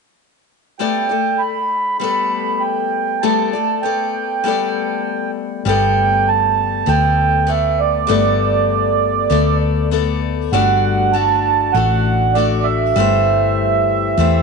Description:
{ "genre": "folk", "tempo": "99 BPM", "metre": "4/4", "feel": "straight", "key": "G major", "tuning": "A4 = 443 Hz", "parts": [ { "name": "mellow accordion", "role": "melody", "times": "0.8-14.4 s", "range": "D5 to B5", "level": "-17 LUFS", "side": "right 8 dB", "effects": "tape echo" }, { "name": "picked steel-string acoustic guitar", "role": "accompaniment", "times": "0.8-14.4 s", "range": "E3 to D5", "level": "-20 LUFS", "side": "left 13 dB", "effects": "none" }, { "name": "hollow-body short-scale fingered electric bass", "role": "bass", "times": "5.7-14.4 s", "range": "G1 to E2", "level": "-19 LUFS", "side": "left 2 dB", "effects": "none" } ], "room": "moderate echo chamber reverb, RT60 1.4 s", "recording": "1960s-style stereo with parts hard left and right, nothing above 10.6 kHz", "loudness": "-14 LUFS", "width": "side -4 dB against mid", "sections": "0.8-5.7 A section; 5.7-14.4 B section", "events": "none", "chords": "0.8 Gadd9; 10.5 D/G; 13.0 Am/G" }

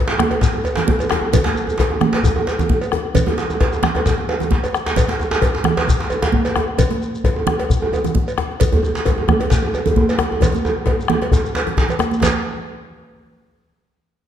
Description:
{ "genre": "west african traditional, West African drum ensemble", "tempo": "132 BPM", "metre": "4/4", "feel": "swing 53% on 16ths", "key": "none", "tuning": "none", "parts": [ { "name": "djembe", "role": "percussion", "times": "0.1-12.4 s", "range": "none", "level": "-20 LUFS", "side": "right 2 dB", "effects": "none" }, { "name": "bombo", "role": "percussion", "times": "0.2-12.4 s", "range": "none", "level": "-21 LUFS", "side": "left 2 dB", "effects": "none" }, { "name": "congas", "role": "percussion", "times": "0.2-12.4 s", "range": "none", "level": "-23 LUFS", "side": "right 5 dB", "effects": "none" }, { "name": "cowbell", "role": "percussion", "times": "0.3-12.4 s", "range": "none", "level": "-26 LUFS", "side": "right 1 dB", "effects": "none" }, { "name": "djembe", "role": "percussion", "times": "0.3-12.4 s", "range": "none", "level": "-24 LUFS", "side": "left 5 dB", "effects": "none" }, { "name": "shekere", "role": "percussion", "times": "0.4-12.4 s", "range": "none", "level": "-26 LUFS", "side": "left 2 dB", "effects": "none" } ], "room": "wet recital hall reverb, RT60 1.6 s", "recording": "dark, warm production", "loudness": "-16 LUFS", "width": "side -10 dB against mid", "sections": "0.0-12.2 A section; 12.2-14.0 B section", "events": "drum fill 4.5-5.0, 10.4-12.2", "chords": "none" }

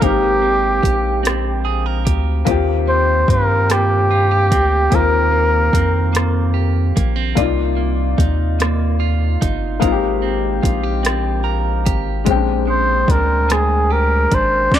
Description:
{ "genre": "slow six-eight R&B", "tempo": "49 BPM (dotted quarters)", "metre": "6/8", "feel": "straight", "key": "Eb major", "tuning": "A4 = 440 Hz", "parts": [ { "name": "clear flugelhorn", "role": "melody", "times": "0.0-6.6, 12.7-14.8 s", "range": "G4 to D5", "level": "-17 LUFS", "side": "right 1 dB", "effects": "none" }, { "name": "clean electric guitar", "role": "second line", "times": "0.0-14.8 s", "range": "Bb2 to Bb4", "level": "-24 LUFS", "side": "right 13 dB", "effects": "none" }, { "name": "warm concert grand piano", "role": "accompaniment", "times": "0.0-14.7 s", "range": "Ab3 to G5", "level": "-22 LUFS", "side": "left 12 dB", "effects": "none" }, { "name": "rubbery square bass", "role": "bass", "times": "0.0-14.7 s", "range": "G1 to G2", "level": "-18 LUFS", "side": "equal", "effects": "none" }, { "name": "smooth R&B drum kit", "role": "drums", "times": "0.0-14.8 s", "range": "hi-hat, kick drum, rim click, snare drum", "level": "-19 LUFS", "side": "equal", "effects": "overdrive" } ], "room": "light reverb, digital ambience", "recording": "1960s-style stereo with parts hard left and right", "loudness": "-14 LUFS", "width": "side -10 dB against mid", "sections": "0.0-14.8 A section", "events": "none", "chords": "0.0 Abmaj9; 2.5 Eb6; 7.4 Cm11; 9.8 Abmaj9; 12.3 Bb13" }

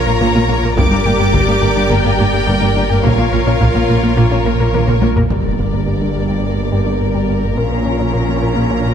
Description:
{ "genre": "cinematic, hybrid orchestral and electronic film score", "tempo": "106 BPM", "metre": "4/4", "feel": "straight", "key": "G minor", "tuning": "A4 = 440 Hz", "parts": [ { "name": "rich symphonic violin section", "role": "melody", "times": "0.0-4.7 s", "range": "F5 to D6", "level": "-22 LUFS", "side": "left 3 dB", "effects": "low-pass filter" }, { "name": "warm symphonic violin section", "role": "second line", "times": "0.0-8.9 s", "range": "Bb4 to Bb5", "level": "-20 LUFS", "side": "left 2 dB", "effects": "none" }, { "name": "clear symphonic viola section", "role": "accompaniment", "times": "0.0-8.9 s", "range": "Bb3 to G4", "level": "-21 LUFS", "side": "right 2 dB", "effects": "low-pass filter" }, { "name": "sub bass with octave", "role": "bass", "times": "0.0-8.9 s", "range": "G1 to Bb1", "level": "-21 LUFS", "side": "equal", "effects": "none" }, { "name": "analog pluck", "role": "arpeggios", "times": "0.1-8.8 s", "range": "G3 to Bb4", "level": "-23 LUFS", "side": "left 3 dB", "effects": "chorus, low-pass filter, ping-pong delay" }, { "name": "round analog bass", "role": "riff", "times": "0.1-8.9 s", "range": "G2 to Bb3", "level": "-20 LUFS", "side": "left 2 dB", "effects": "low-pass filter" }, { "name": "rich studio cello section", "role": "bass", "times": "0.1-8.9 s", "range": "G2 to Bb2", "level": "-21 LUFS", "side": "right 2 dB", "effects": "none" }, { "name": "rich symphonic double bass section", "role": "bass", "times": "0.2-8.9 s", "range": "G1 to Bb1", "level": "-21 LUFS", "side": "right 4 dB", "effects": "none" }, { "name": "taiko ensemble", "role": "drums", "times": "0.8-6.4 s", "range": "none", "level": "-20 LUFS", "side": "equal", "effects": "none" }, { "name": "impact", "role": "sound effects", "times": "5.3-7.6 s", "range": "none", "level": "-25 LUFS", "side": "equal", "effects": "none" } ], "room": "moderate scoring stage reverb, RT60 1.6 s", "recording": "none", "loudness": "-12 LUFS", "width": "side -8 dB against mid", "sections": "0.0-5.3 A section; 5.3-8.9 B section", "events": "drum fill 4.7-5.3; impact 5.3-7.6; filter sweep 5.3-8.9", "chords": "0.0 Bbm; 0.8 Gm; 3.0 Bbm; 5.3 Gm; 7.6 Bbm" }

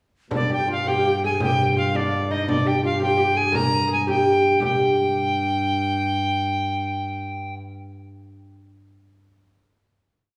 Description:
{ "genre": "medieval dance", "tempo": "111 BPM (dotted quarters)", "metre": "6/8", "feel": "straight", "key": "G phrygian", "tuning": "A4 = 440 Hz", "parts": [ { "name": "oud", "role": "second line", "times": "0.3-8.2 s", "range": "D4 to Bb4", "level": "-26 LUFS", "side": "equal", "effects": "none" }, { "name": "warm viola da gamba", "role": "drone", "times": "0.3-7.6 s", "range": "G2", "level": "-31 LUFS", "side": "equal", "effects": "none" }, { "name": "frame drum", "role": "percussion", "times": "0.3-4.8 s", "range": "none", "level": "-30 LUFS", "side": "equal", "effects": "none" }, { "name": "bright reedy soprano recorder", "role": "melody", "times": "0.4-7.5 s", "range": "D5 to Bb5", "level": "-25 LUFS", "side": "equal", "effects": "none" } ], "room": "wet recital hall reverb, RT60 1.6 s", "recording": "recorded in a church or concert hall, small room ambience", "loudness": "-22 LUFS", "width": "mono", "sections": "0.3-4.6 A section; 4.6-6.8 final note", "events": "none", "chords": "none" }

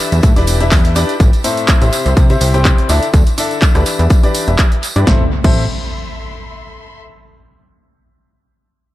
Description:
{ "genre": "piano house", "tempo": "124 BPM", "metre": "4/4", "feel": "swing 54% on 16ths", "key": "A minor", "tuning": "A4 = 441 Hz", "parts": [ { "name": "clear grand piano", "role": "riff", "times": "0.0-5.6 s", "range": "A2 to G5", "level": "-18 LUFS", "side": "left 2 dB", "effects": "sidechain pumping, low-pass filter, dub echo" }, { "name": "rich studio string section", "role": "texture", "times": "0.0-7.0 s", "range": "C4 to E6", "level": "-31 LUFS", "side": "left 1 dB", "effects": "sidechain pumping" }, { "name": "plucky analog bass", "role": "bass", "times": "0.1-5.7 s", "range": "E1 to C3", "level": "-14 LUFS", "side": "equal", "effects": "sidechain pumping" }, { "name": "punchy analog drum machine", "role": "drums", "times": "0.1-5.5 s", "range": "crash cymbal, handclaps, hi-hat, rim click, snare drum", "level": "-21 LUFS", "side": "equal", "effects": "dub echo" }, { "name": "tambourine", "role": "percussion", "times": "0.1-5.0 s", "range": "none", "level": "-27 LUFS", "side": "right 1 dB", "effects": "dub echo" }, { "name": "electronic kick drum", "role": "drums", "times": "0.2-5.5 s", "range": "none", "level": "-11 LUFS", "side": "equal", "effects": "overdrive" }, { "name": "tight funk drum kit", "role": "drums", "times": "0.2-1.1 s", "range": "hi-hat, snare drum", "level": "-33 LUFS", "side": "left 3 dB", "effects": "none" }, { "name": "impact", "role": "sound effects", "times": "5.1-7.0 s", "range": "none", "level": "-22 LUFS", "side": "equal", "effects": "none" } ], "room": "small room ambience", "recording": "echo-heavy mix", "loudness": "-10 LUFS", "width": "side -15 dB against mid", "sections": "0.0-5.1 A section; 5.1-7.0 B section", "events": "none", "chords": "0.0 Em7; 1.2 Am; 1.9 C; 2.9 Dsus2; 3.9 Em7; 5.1 Am" }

